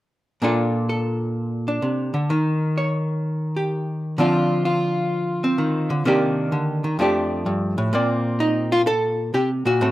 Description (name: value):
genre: solo jazz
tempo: 128 BPM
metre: 4/4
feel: swing 68% on 8ths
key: Bb major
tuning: A4 = 441 Hz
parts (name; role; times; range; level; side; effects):
- archtop guitar, miked and amplified; solo; 0.4-9.9 s; F2 to D5; -19 LUFS; equal; none
room: little or no reverb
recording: dry, close 1970s-style studio recording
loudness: -19 LUFS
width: side -16 dB against mid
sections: 0.4-7.9 A section; 7.9-9.9 B section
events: none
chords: 0.4 Bbmaj9; 2.3 Eb7; 4.2 Dm7; 6.0 Cm9; 7.0 F69; 7.9 Bbadd9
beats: | 0.41 0.88 1.35 1.81 | 2.29 2.75 3.23 3.69 | 4.17 4.63 5.11 5.58 | 6.04 6.51 6.99 7.46 | 7.92 8.40 8.87 9.34 | 9.81